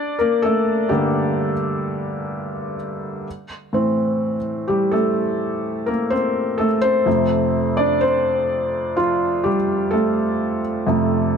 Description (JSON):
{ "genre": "pop ballad", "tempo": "63 BPM", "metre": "4/4", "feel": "straight", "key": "F major", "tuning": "A4 = 440 Hz", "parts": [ { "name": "felt-muted upright piano", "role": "solo", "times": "0.0-11.4 s", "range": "F2 to D5", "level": "-18 LUFS", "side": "equal", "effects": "none" } ], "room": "light reverb", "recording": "dark, warm production", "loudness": "-18 LUFS", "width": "side -6 dB against mid", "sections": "0.0-11.4 A section", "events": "felt piano solo 0.0-11.4", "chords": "0.0 Gm; 3.3 Am; 7.1 F" }